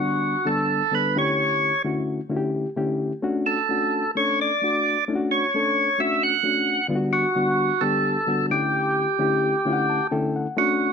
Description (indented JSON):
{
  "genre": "soul",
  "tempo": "131 BPM",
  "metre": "4/4",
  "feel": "straight",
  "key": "unclear",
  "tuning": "A4 = 440 Hz",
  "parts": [
    { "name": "percussive tonewheel organ", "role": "melody", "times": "0.0-10.9 s", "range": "F#4 to F#5", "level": "-21 LUFS", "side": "right 2 dB", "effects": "overdrive, slow rotary speaker" },
    { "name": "reed electric piano", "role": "accompaniment", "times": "0.0-10.9 s", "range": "D3 to A5", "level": "-24 LUFS", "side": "left 2 dB", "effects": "none" }
  ],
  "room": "moderate large studio reverb, RT60 1.0 s",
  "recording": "none",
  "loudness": "-20 LUFS",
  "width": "side -6 dB against mid",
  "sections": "0.0-10.6 A section",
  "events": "reed electric piano fill 9.7-10.6",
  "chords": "0.0 Gmaj7/D; 1.2 A7/D; 3.2 Dmaj7; 6.9 Gmaj7/D; 8.5 A7/D",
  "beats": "0.01 0.47 0.93 | 1.39 1.85 2.31 2.77 | 3.23 3.69 4.15 4.61 | 5.07 5.53 5.99 6.45 | 6.90 7.36 7.82 8.28 | 8.74 9.19 9.65 10.11 | 10.57"
}